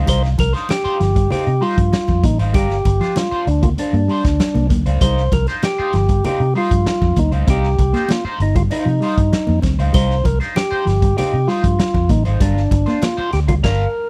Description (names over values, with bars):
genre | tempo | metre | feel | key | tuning
funk | 97 BPM | 4/4 | straight | C minor | A4 = 439 Hz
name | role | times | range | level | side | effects
electric guitar at the edge of break-up | accompaniment | 0.0-13.8 s | D4 to C5 | -29 LUFS | equal | wah
vintage muted fingered electric bass | bass | 0.0-13.8 s | G1 to C3 | -20 LUFS | equal | none
percussive tonewheel organ | melody | 0.1-14.1 s | D4 to C5 | -23 LUFS | equal | overdrive, stopped rotary speaker
mellow electric guitar | riff | 0.1-13.6 s | F3 to C4 | -26 LUFS | equal | none
raw garage drum kit | drums | 0.1-13.8 s | crash cymbal, hi-hat, kick drum, snare drum | -22 LUFS | equal | none
congas | percussion | 0.1-13.6 s | none | -28 LUFS | equal | none
room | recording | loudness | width
studio ambience | dry, close 1970s-style studio recording | -17 LUFS | mono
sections
0.0-14.1 A section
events
band accent 13.6-14.1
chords
0.0 Cm11; 2.5 Gm7; 5.0 Cm11; 12.4 Gm7